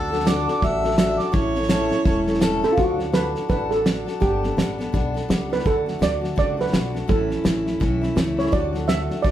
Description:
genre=honky-tonk and classic country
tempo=167 BPM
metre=4/4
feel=swing 61% on 8ths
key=D major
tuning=A4 = 440 Hz
part: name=warm harmonica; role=second line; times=0.0-2.6 s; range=A4 to E5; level=-25 LUFS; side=right 2 dB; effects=none
part: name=picked steel-string acoustic guitar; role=accompaniment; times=0.0-9.3 s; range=A2 to A4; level=-24 LUFS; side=left 2 dB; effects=none
part: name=upright bass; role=bass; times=0.0-9.3 s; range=E1 to D2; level=-28 LUFS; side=equal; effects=none
part: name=cloth-damped thuddy drum kit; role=drums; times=0.1-9.3 s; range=hi-hat, kick drum, snare drum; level=-23 LUFS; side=equal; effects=none
part: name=steel pan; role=melody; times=2.6-9.3 s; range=F4 to E5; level=-24 LUFS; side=right 3 dB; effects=none
room=wet studio reverb, RT60 0.7 s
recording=heard from further back in the room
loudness=-19 LUFS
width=side -12 dB against mid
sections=0.0-2.8 A section; 2.8-9.3 B section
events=harmonica solo 0.0-2.8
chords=0.0 D; 1.3 A; 2.8 D; 4.2 Gadd9; 5.7 D; 7.1 A; 8.5 D

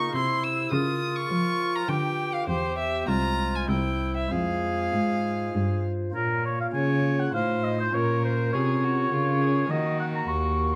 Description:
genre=classical, baroque-style sonata movement with continuo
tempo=101 BPM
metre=3/4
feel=rubato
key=F minor, Bb minor from 6.2 s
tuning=A4 = 440 Hz
part: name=clear violin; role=melody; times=0.0-10.8 s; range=F4 to E6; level=-33 LUFS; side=equal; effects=none
part: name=warm oboe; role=second line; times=0.0-10.8 s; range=Eb4 to Db6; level=-32 LUFS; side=equal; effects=none
part: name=pipe organ, stopped flute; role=accompaniment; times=0.0-10.8 s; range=C2 to Db5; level=-33 LUFS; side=equal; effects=none
part: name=rich cello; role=bass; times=0.0-10.8 s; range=C2 to F3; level=-30 LUFS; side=equal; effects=none
room=moderate recital hall reverb, RT60 1.4 s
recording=none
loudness=-26 LUFS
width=mono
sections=0.0-6.2 A section; 6.2-10.8 A section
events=none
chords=0.1 C; 0.7 Bbm/Db; 1.9 G7/D; 2.5 C/E; 3.1 Fm/C; 3.7 C; 4.3 Fm; 6.2 Bbm; 7.3 F7/A; 7.9 Bbm; 9.7 Ebm

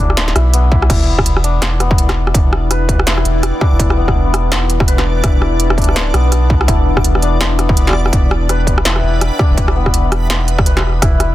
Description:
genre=half-time drum and bass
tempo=166 BPM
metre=4/4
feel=swing 59% on 16ths, half-time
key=E minor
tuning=A4 = 440 Hz
part: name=santur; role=arpeggios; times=0.0-11.3 s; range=B3 to B4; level=-21 LUFS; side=left 4 dB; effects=vintage 12-bit sampler grit, tape echo
part: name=saturated sub bass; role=bass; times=0.0-11.3 s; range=D1 to B1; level=-15 LUFS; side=equal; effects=none
part: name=industrial drum kit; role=drums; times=0.1-11.3 s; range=crash cymbal, hi-hat, rim click, snare drum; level=-18 LUFS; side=right 1 dB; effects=none
part: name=electronic kick drum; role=drums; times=0.7-11.1 s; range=none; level=-14 LUFS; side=equal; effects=distortion
part: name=deep dark ambient pad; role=sustained chords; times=2.1-11.3 s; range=E4 to B5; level=-23 LUFS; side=left 2 dB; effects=chorus, built-in reverb, sidechain pumping
part: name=backwards swelling texture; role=texture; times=2.0-11.3 s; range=D4 to D5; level=-26 LUFS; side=left 2 dB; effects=built-in reverb
room=little or no reverb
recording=dense, heavily limited modern master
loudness=-11 LUFS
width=side -14 dB against mid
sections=0.0-11.3 A section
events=none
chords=0.0 Emadd9

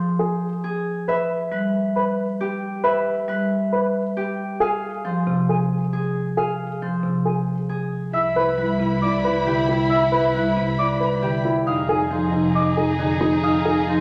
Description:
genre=classical, minimalist pattern music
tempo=136 BPM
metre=4/4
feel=straight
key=unclear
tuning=A4 = 440 Hz
part: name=Celtic harp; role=melody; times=0.0-14.0 s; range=G4 to F5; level=-30 LUFS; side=equal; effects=none
part: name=marimba with soft mallets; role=accompaniment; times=0.0-14.0 s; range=C3 to G3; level=-27 LUFS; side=equal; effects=none
part: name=dark baby grand piano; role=arpeggios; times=0.2-13.9 s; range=Eb4 to B4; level=-27 LUFS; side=equal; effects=none
part: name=mellow hollow silver concert flute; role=arpeggios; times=1.1-13.7 s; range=Ab5 to E6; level=-30 LUFS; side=equal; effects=none
part: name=warm French horn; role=second line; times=8.1-14.0 s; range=Eb4 to E4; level=-27 LUFS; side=equal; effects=none
part: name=warm studio violin section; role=sustained chords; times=8.1-14.0 s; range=Eb4 to B5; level=-29 LUFS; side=equal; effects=none
part: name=dark double bass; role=bass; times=8.1-14.0 s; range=C2 to F2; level=-32 LUFS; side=equal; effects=none
room=wet recital hall reverb, RT60 1.8 s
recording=none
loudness=-22 LUFS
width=mono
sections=0.0-8.1 A section; 8.1-14.0 A section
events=none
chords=0.0 Fm; 1.1 Cmaj7; 4.6 Fm; 8.1 Cmaj7; 11.7 Fm7

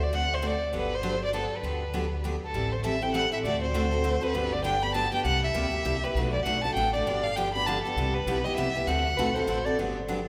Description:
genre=acoustic string swing (jazz manouche)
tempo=199 BPM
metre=3/4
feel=swing 59% on 8ths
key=G major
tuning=A4 = 440 Hz
part: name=warm violin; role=melody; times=0.0-9.5 s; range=A4 to B5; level=-31 LUFS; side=equal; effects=none
part: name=picked steel-string acoustic guitar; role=accompaniment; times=0.0-10.2 s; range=B2 to A4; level=-33 LUFS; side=equal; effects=none
part: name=upright bass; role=bass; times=0.0-10.3 s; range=G1 to D2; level=-34 LUFS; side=equal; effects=none
part: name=breathy soprano saxophone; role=second line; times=9.2-9.8 s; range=B4 to D5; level=-35 LUFS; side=equal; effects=none
room=wet church reverb, RT60 2.9 s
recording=recorded in a church or concert hall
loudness=-28 LUFS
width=mono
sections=0.0-2.5 A section; 2.5-9.8 B section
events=none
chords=0.0 D7; 0.7 Gmaj7; 2.5 Am7; 3.4 D7; 4.3 Gmaj7; 5.2 C9; 6.2 Bm7; 7.1 G7; 8.0 Cmaj7; 8.9 D7; 9.8 Gmaj7

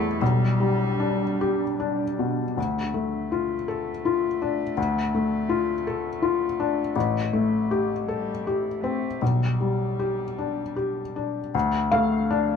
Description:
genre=neoclassical piano and strings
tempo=50-55 BPM (dotted quarters)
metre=6/8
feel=rubato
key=D dorian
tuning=A4 = 438 Hz
part: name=warm cello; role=second line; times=0.0-11.3 s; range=E3 to A3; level=-34 LUFS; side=right 2 dB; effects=none
part: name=felt-muted upright piano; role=accompaniment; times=0.0-12.6 s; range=A1 to F5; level=-23 LUFS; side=left 3 dB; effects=none
part: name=warbly tape-like pad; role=sustained chords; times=0.0-2.6, 12.5-12.6 s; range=F3 to A4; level=-32 LUFS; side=right 6 dB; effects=chorus, built-in reverb
room=moderate studio ambience, RT60 0.5 s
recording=none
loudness=-23 LUFS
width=side -6 dB against mid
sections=0.0-2.6 A section; 2.6-11.5 B section; 11.5-12.6 C section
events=none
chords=0.2 G/B; 2.6 Dm; 7.0 Am7; 9.2 G/B; 11.5 Dm

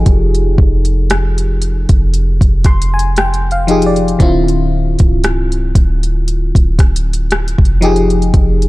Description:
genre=contemporary R&B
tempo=58 BPM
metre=4/4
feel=swing 54% on 16ths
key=unclear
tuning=A4 = 440 Hz
part: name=FM electric piano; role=accompaniment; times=0.0-8.7 s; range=D3 to C6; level=-16 LUFS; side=left 2 dB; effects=chorus
part: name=soft 808-style bass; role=bass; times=0.0-8.7 s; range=C1 to F1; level=-14 LUFS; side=equal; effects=none
part: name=smooth R&B drum kit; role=drums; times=0.1-8.7 s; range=hi-hat, kick drum, rim click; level=-12 LUFS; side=equal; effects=vintage 12-bit sampler grit
room=little or no reverb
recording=dark, warm production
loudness=-10 LUFS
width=side -19 dB against mid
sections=0.0-8.7 A section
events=FM electric piano fill 2.1-4.2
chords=0.0 Fm9; 4.2 Dm9; 7.8 Fm9

